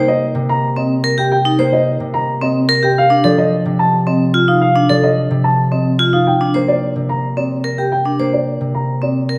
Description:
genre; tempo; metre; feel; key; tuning
classical, minimalist pattern music; 109 BPM; 3/4; straight; unclear; A4 = 440 Hz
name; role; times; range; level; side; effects
dark baby grand piano; melody; 0.0-9.2 s; C5 to Bb5; -20 LUFS; equal; none
concert harp; accompaniment; 0.0-9.4 s; C3 to Bb3; -20 LUFS; equal; none
vibraphone with hard mallets; arpeggios; 0.0-9.4 s; C4 to C5; -19 LUFS; equal; none
room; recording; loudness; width
wet recital hall reverb, RT60 1.9 s; none; -15 LUFS; mono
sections
0.0-9.4 A section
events
none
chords
0.0 Eb; 3.0 F7(no3); 6.3 Gm (rootless)

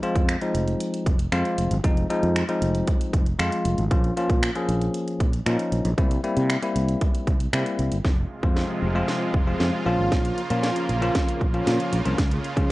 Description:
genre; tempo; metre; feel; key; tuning
dance-pop; 116 BPM; 4/4; straight; F minor; A4 = 441 Hz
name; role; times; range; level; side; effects
bell-like tine electric piano; accompaniment; 0.0-12.7 s; F3 to Ab4; -26 LUFS; left 1 dB; sidechain pumping
house drum kit; drums; 0.0-12.7 s; finger snaps, hi-hat, kick drum, snare drum; -24 LUFS; equal; overdrive
fretless electric bass; bass; 0.2-12.7 s; F1 to Db3; -25 LUFS; equal; sidechain pumping
supersaw pad; sustained chords; 8.0-12.7 s; C3 to F4; -30 LUFS; right 2 dB; sidechain pumping
room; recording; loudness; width
light reverb, digital ambience; worn, warbling old tape, cassette tape, warbly pitch drift, nothing above 10.7 kHz; -21 LUFS; side -18 dB against mid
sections
0.0-8.0 A section; 8.0-12.7 B section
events
build-up 8.0-12.7; drum fill 8.0-12.7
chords
0.0 Fm7; 3.9 Bbm; 6.0 C7; 8.0 Fm; 9.9 Bbm; 12.2 Db

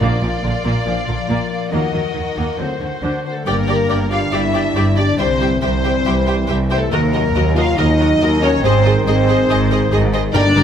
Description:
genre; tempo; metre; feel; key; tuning
cinematic, heroic adventure film score; 139 BPM; 4/4; straight; unclear; A4 = 440 Hz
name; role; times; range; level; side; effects
rich symphonic violin section; melody; 0.0-10.6 s; A4 to F5; -24 LUFS; left 3 dB; none
clear clarinet; second line; 0.0-3.5 s; Bb4 to D5; -30 LUFS; equal; none
hollow small flute group; second line; 0.0-10.6 s; A4 to Gb5; -26 LUFS; left 1 dB; none
warm studio violin section; second line; 0.0-10.6 s; F4 to G5; -28 LUFS; left 1 dB; none
rich symphonic viola section; accompaniment; 0.0-10.6 s; D3 to D5; -24 LUFS; right 1 dB; none
clear trombone section; sustained chords; 0.0-10.6 s; A2 to D4; -26 LUFS; right 4 dB; none
mellow French horn section; sustained chords; 0.0-10.6 s; A3 to F4; -20 LUFS; left 3 dB; none
concert harp; arpeggios; 0.0-10.6 s; G2 to E5; -25 LUFS; left 8 dB; none
rich symphonic cello section; bass; 0.0-10.6 s; C2 to Eb3; -22 LUFS; right 2 dB; none
rich symphonic double bass section; bass; 0.0-10.6 s; G1 to Eb2; -21 LUFS; right 3 dB; none
timpani; percussion; 0.0-0.6, 10.3-10.6 s; G2 to Bb2; -21 LUFS; equal; none
room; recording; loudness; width
moderate scoring stage reverb, RT60 1.5 s; none; -14 LUFS; side -8 dB against mid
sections
0.0-3.5 A section; 3.5-10.6 B section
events
none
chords
0.0 Bb; 1.7 Ebm; 2.6 D7; 3.5 Gm; 5.2 C; 6.9 Ebm; 8.6 Ab

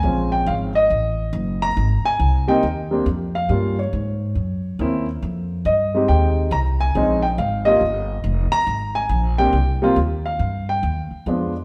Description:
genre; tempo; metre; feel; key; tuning
jazz piano trio; 139 BPM; 4/4; swing 65% on 8ths; unclear; A4 = 440 Hz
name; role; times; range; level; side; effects
warm grand piano; melody; 0.0-11.6 s; F3 to Bb5; -22 LUFS; equal; none
upright bass; bass; 0.0-11.6 s; F1 to Ab2; -24 LUFS; equal; none
room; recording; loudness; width
moderate stone room reverb, RT60 1.5 s; band playing live in one room; -20 LUFS; mono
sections
0.0-11.6 A section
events
none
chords
0.0 Bbm7; 0.9 F#m6; 1.8 Abmaj9; 3.5 Gm7b5; 4.4 F#7#11; 5.2 Fm9; 7.0 Bbm11; 7.8 Ebadd9; 8.7 Abmaj9; 10.4 G7(no3)

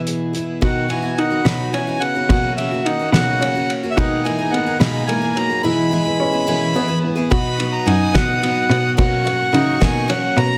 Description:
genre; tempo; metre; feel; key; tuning
indie folk with a building arrangement; 72 BPM (dotted quarters); 6/8; straight; B major; A4 = 440 Hz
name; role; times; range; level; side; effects
fingerpicked steel-string acoustic guitar; accompaniment; 0.0-2.3 s; B2 to G#4; -32 LUFS; equal; none
picked twelve-string acoustic guitar; accompaniment; 0.0-10.6 s; B2 to G#4; -26 LUFS; equal; none
rich cello; bass; 0.0-10.6 s; F#2 to C#3; -24 LUFS; equal; none
cloth-damped thuddy drum kit; drums; 0.1-10.5 s; hi-hat, kick drum, ride cymbal, snare drum; -24 LUFS; equal; none
accordion; melody; 0.6-10.6 s; E5 to B5; -24 LUFS; equal; slapback echo
clear French horn; second line; 0.6-7.0 s; C#3 to G#3; -28 LUFS; equal; plate reverb
clear upright piano; arpeggios; 0.6-10.6 s; A#3 to F#4; -26 LUFS; equal; plate reverb
felt-muted upright piano; accompaniment; 4.0-10.6 s; B1 to F#5; -31 LUFS; equal; none
rich chamber string section; sustained chords; 4.0-10.6 s; B3 to D#6; -35 LUFS; equal; none
room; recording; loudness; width
moderate large studio reverb, RT60 0.8 s; dense, heavily limited modern master; -18 LUFS; mono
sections
0.6-7.3 A section; 7.3-10.6 B section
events
none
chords
0.0 E/B; 0.6 B; 2.3 F#/B; 4.0 G#madd9/B; 5.6 E/B; 7.3 B; 9.0 F#/B

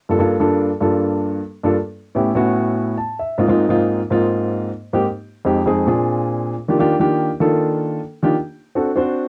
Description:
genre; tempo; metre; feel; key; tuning
jazz; 146 BPM; 4/4; straight; G minor; A4 = 439 Hz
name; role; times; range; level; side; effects
dark baby grand piano; solo; 0.1-9.3 s; F2 to A5; -19 LUFS; equal; cassette tape
room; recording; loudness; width
moderate booth ambience, RT60 0.2 s; home recording on cassette; -19 LUFS; mono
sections
0.1-9.3 A section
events
grand piano fill 2.8-3.4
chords
0.1 Gm7; 1.7 Aadd9; 3.4 Ab69; 5.0 Fm7; 5.9 Bb7; 6.7 Ebmaj7; 8.3 D7

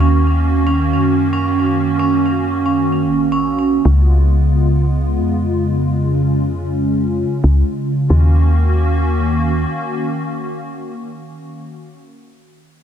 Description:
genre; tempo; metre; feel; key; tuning
IDM; 113 BPM; 4/4; straight; Eb minor; A4 = 441 Hz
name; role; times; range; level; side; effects
hollow soft pad; sustained chords; 0.0-12.0 s; Db3 to Gb4; -18 LUFS; left 1 dB; ensemble chorus
vibraphone with soft mallets; arpeggios; 0.0-3.9 s; Db4; -17 LUFS; right 5 dB; tape echo
woody FM bass; bass; 0.0-9.7 s; Bb1 to Gb2; -16 LUFS; equal; tube saturation
room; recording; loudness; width
moderate echo chamber reverb, RT60 1.2 s; none; -13 LUFS; side -9 dB against mid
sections
0.0-8.1 A section; 8.1-12.3 B section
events
filter sweep on analog synth pad 0.0-8.1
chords
0.0 Ebm7; 3.9 Db7; 8.1 Ebm7

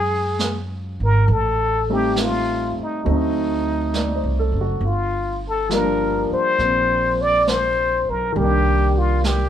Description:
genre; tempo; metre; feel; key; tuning
jazz ballad; 68 BPM; 4/4; swing 69% on 8ths; unclear; A4 = 441 Hz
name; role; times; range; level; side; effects
trumpet with plunger mute; melody; 0.0-9.5 s; Eb4 to D5; -20 LUFS; left 2 dB; none
clear concert grand piano; accompaniment; 0.0-9.5 s; Eb3 to D5; -24 LUFS; equal; none
upright bass; bass; 0.0-9.5 s; F#1 to Gb2; -22 LUFS; right 1 dB; none
jazz brush drum kit; drums; 0.4-9.5 s; brushed snare drum, hi-hat, snare drum; -27 LUFS; right 3 dB; none
room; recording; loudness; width
moderate studio reverb, RT60 0.9 s; band playing live in one room; -17 LUFS; side -10 dB against mid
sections
0.0-9.5 A section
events
none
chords
0.0 Ebm11 (rootless); 1.3 Am7b5; 3.0 D7b9; 4.8 Gm7; 8.4 Cm9

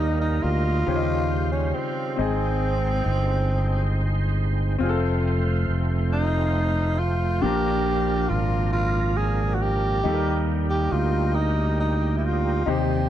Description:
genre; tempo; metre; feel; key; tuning
gospel; 46 BPM (dotted quarters); 6/8; straight; Eb major; A4 = 440 Hz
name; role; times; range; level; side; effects
growling tenor saxophone; melody; 0.0-13.1 s; C4 to Ab4; -26 LUFS; right 1 dB; none
bright baby grand piano; accompaniment; 0.0-13.1 s; Bb2 to Eb5; -29 LUFS; left 6 dB; none
overdriven tonewheel organ; sustained chords; 0.0-13.1 s; Db3 to C5; -30 LUFS; right 5 dB; slow rotary speaker, chorus vibrato
fingered electric bass; bass; 0.0-13.1 s; F1 to Eb2; -23 LUFS; equal; none
room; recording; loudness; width
little or no reverb; dark, warm production; -21 LUFS; side -11 dB against mid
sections
0.0-13.1 A section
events
none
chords
0.0 Eb; 0.9 Eb13; 2.2 Ab; 4.8 F; 7.4 Bb; 10.0 Eb

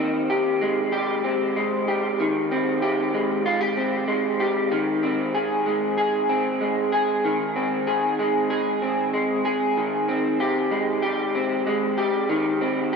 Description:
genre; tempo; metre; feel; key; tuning
dream pop; 95 BPM; 4/4; straight; Ab major; A4 = 442 Hz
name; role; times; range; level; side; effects
electric guitar through a small old amp; solo; 0.0-13.0 s; Eb3 to Ab4; -21 LUFS; equal; analog chorus, analog delay
room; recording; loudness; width
wet huge ambient reverb, RT60 7.9 s; dreamy mix soaked in reverb; -21 LUFS; side -5 dB against mid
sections
0.0-13.0 A section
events
none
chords
0.0 Abmaj7; 4.7 Ab/Eb; 9.8 Abmaj7

